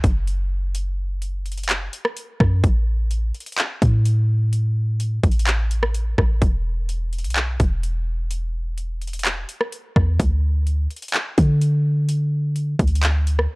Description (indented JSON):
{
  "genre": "hip hop, atmospheric cloud-rap",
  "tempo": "127 BPM",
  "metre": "4/4",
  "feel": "half-time",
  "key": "unclear",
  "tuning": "A4 = 440 Hz",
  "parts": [
    { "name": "clean 808-style bass", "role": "bass", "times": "0.0-13.5 s", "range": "E1 to D3", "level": "-20 LUFS", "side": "equal", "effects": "none" },
    { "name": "trap drum kit", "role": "drums", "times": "0.0-13.5 s", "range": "handclaps, hi-hat, kick drum, rim click", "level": "-22 LUFS", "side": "equal", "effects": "overdrive" }
  ],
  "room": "little or no reverb",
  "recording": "dry, gritty hardware recording",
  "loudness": "-19 LUFS",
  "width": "side -28 dB against mid",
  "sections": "0.0-13.6 A section",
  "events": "none",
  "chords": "none"
}